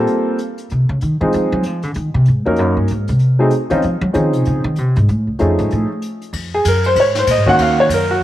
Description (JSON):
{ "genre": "jazz piano trio", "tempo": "192 BPM", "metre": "4/4", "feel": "swing 62% on 8ths", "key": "Bb minor", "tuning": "A4 = 437 Hz", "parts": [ { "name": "warm upright piano", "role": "melody", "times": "0.0-8.2 s", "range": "Eb3 to Gb5", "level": "-15 LUFS", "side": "equal", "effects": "none" }, { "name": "upright bass", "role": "bass", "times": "0.0-8.2 s", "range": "C#2 to Gb3", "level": "-16 LUFS", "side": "equal", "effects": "none" }, { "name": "jazz brush drum kit", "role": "drums", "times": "0.1-8.0 s", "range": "hi-hat, kick drum, ride cymbal, snare drum", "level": "-28 LUFS", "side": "left 5 dB", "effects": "none" } ], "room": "light reverb, small room reverb", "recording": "1960s-style stereo", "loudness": "-13 LUFS", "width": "side -13 dB against mid", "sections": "0.0-6.3 A section; 6.3-8.2 A section", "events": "upright bass solo 0.0-6.3; upright piano solo 6.3-8.2", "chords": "0.1 Gm11; 0.7 Dbmaj7sus2/C; 1.3 Fm7; 2.6 Ebm7; 3.2 Ab (rootless); 3.8 Dbmaj9; 5.1 F7alt; 6.3 Bbm7; 7.6 Ebm7" }